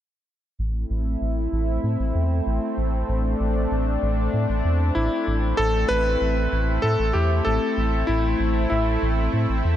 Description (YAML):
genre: synthwave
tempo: 96 BPM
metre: 4/4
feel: straight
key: A minor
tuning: A4 = 440 Hz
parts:
  - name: lush unison pad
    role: sustained chords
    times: 0.6-9.8 s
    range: A3 to E4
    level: -26 LUFS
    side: equal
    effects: chorus
  - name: round analog bass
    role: bass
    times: 0.6-9.8 s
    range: A1 to A2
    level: -23 LUFS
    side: equal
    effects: none
  - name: clear electric grand piano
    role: melody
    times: 4.9-9.3 s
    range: E4 to B4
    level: -24 LUFS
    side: left 1 dB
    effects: ping-pong delay
room: light reverb, digital ambience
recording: none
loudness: -20 LUFS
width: side -11 dB against mid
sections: 0.6-5.6 A section; 5.6-9.8 B section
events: filter sweep on analog synth pad 0.6-5.6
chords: 0.6 Am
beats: | 0.59 1.21 1.84 2.46 | 3.09 3.71 4.34 4.96 | 5.59 6.21 6.84 7.46 | 8.09 8.71 9.34